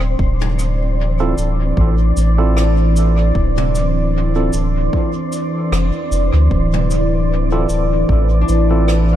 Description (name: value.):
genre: ambient dub.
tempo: 76 BPM.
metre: 4/4.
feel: swing 56% on 16ths.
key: D minor.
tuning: A4 = 441 Hz.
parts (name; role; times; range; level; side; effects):
deep dark ambient pad; sustained chords; 0.0-9.2 s; E3 to D5; -20 LUFS; right 1 dB; chorus, built-in reverb.
concert harp; arpeggios; 0.0-1.1, 8.4-9.2 s; E3 to G5; -30 LUFS; left 4 dB; tape echo.
warm sub bass; bass; 0.0-9.2 s; D1 to D2; -15 LUFS; equal; none.
wind-like tuned noise texture; texture; 0.0-9.2 s; C4 to D5; -28 LUFS; right 1 dB; built-in reverb.
electronic kick drum; drums; 0.2-8.3 s; none; -19 LUFS; equal; overdrive.
jazz brush drum kit; drums; 0.4-9.1 s; cabasa, rim click, toms; -27 LUFS; equal; dub echo.
bright tine electric piano; stabs; 1.2-8.9 s; C4 to A4; -25 LUFS; right 3 dB; medium stereo tremolo, dub echo.
room: light reverb, small room ambience.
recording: none.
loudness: -14 LUFS.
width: side -12 dB against mid.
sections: 0.0-9.2 A section.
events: none.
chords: 0.0 Dm7.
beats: | 0.19 0.98 1.77 2.56 | 3.35 4.14 4.93 5.72 | 6.51 7.30 8.09 8.88.